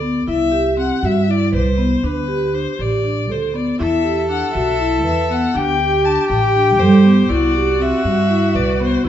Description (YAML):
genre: contemporary instrumental, chamber music in an uneven meter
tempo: 240 BPM (eighths)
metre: 7/8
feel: straight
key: unclear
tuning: A4 = 441 Hz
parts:
  - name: rich violin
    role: melody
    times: 0.0-9.1 s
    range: B4 to A5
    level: -21 LUFS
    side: left 7 dB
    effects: none
  - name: vibraphone with medium mallets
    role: arpeggios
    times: 0.0-9.1 s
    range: B3 to B4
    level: -19 LUFS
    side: equal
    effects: none
  - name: upright bass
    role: bass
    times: 0.0-9.1 s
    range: A1 to G2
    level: -18 LUFS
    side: right 2 dB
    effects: none
  - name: bright viola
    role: second line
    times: 3.8-9.1 s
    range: F#4 to A4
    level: -21 LUFS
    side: right 1 dB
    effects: none
room: wet recital hall reverb, RT60 1.4 s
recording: dark, warm production, nothing above 7.7 kHz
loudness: -14 LUFS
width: side -10 dB against mid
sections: 0.0-9.1 A section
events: none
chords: 0.3 Cmaj7; 2.0 Dsus4; 3.8 E5; 5.5 D7sus4; 7.3 Cmaj7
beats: 0.03 | 0.28 0.53 0.78 1.03 1.28 1.54 1.79 | 2.04 2.29 2.54 2.79 3.04 3.29 3.54 | 3.79 4.04 4.29 4.54 4.79 5.04 5.29 | 5.54 5.79 6.04 6.29 6.54 6.79 7.04 | 7.29 7.54 7.79 8.04 8.29 8.54 8.79 | 9.04